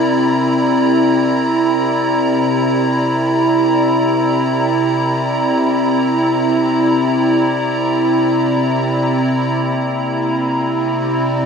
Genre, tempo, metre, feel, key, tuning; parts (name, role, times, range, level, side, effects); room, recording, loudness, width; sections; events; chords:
ambient; free time; C mixolydian; A4 = 440 Hz
evolving wavetable pad; sustained chords; 0.0-11.5 s; C3 to Bb5; -13 LUFS; equal; chorus, built-in reverb
glass harmonica; texture; 0.0-9.7 s; E4 to Bb4; -29 LUFS; right 1 dB
warm cello; melody; 9.6-11.5 s; Bb3 to C4; -32 LUFS; right 1 dB
wet spring reverb, RT60 2.3 s; echo-heavy mix; -13 LUFS; side -6 dB against mid
0.0-9.6 A section; 9.6-11.5 B section
0.0 C7